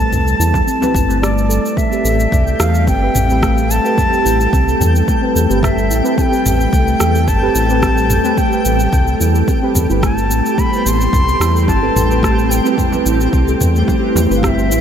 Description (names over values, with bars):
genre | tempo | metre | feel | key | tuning
organic downtempo | 109 BPM | 4/4 | straight | A minor | A4 = 440 Hz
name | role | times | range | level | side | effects
bright reedy bansuri | melody | 0.0-14.8 s | D5 to C6 | -19 LUFS | left 1 dB | ping-pong delay
deep mellow chord stab | accompaniment | 0.0-14.8 s | B3 to B4 | -21 LUFS | right 2 dB | chorus, phaser, sidechain pumping, analog delay
ethereal airy pad | sustained chords | 0.0-14.8 s | G3 to A4 | -23 LUFS | right 1 dB | ensemble chorus, built-in reverb, tremolo, sidechain pumping
steel tongue drum | arpeggios | 0.0-14.8 s | A3 to A4 | -21 LUFS | equal | analog delay
round analog bass | bass | 0.0-14.8 s | G1 to E2 | -16 LUFS | equal | sidechain pumping
deep house drum kit | drums | 0.0-14.8 s | cabasa, rim click, toms | -22 LUFS | equal | none
electronic kick drum | drums | 0.5-14.5 s | none | -18 LUFS | equal | none
frame drum | percussion | 0.5-0.9, 11.7-14.3 s | none | -29 LUFS | right 2 dB | none
twinkling granular texture | texture | 2.1-14.8 s | C4 to G5 | -25 LUFS | right 2 dB | built-in reverb
room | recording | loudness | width
moderate huge ambient reverb, RT60 7.3 s | dreamy mix soaked in reverb | -12 LUFS | side -8 dB against mid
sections
0.0-1.8 A section; 1.8-14.8 A section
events
none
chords
0.0 Am7